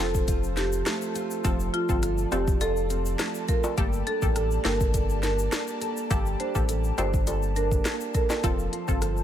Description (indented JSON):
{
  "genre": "dancehall",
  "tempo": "103 BPM",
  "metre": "4/4",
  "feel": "straight",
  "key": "G minor",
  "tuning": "A4 = 440 Hz",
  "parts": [
    { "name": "marimba with medium hard mallets", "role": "melody", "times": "0.0-8.3 s", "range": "F4 to C5", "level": "-31 LUFS", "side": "right 2 dB", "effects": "tape echo" },
    { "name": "punchy chord stab", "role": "accompaniment", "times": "0.0-9.2 s", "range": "Bb3 to A4", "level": "-34 LUFS", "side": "left 3 dB", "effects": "chorus" },
    { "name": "airy breathy pad", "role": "sustained chords", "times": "0.0-9.2 s", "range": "Bb3 to A5", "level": "-35 LUFS", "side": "left 2 dB", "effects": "chorus" },
    { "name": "nylon-string guitar", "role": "arpeggios", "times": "0.0-9.2 s", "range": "F3 to A4", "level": "-33 LUFS", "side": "right 5 dB", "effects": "tape echo" },
    { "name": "warm sub bass", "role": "bass", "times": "0.0-9.2 s", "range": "F1 to A1", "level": "-29 LUFS", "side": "equal", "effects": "none" },
    { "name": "afro-pop drum kit", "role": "drums", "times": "0.1-9.2 s", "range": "hi-hat, kick drum, rim click, snare drum", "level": "-27 LUFS", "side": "equal", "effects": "none" },
    { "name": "egg shaker and timbales", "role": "percussion", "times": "0.1-9.2 s", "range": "none", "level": "-37 LUFS", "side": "left 5 dB", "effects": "none" },
    { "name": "soft round pluck", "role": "second line", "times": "8.4-9.2 s", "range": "F4", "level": "-36 LUFS", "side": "right 4 dB", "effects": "chorus, tape echo" }
  ],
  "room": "little or no reverb",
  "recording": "none",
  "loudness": "-24 LUFS",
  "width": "side -10 dB against mid",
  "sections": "0.0-9.2 A section",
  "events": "none",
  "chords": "0.0 F; 3.8 Gmadd9; 8.4 F",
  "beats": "0.28 0.86 | 1.45 2.03 2.61 3.19 | 3.78 4.36 4.94 5.52 | 6.11 6.69 7.27 7.85 | 8.44 9.02"
}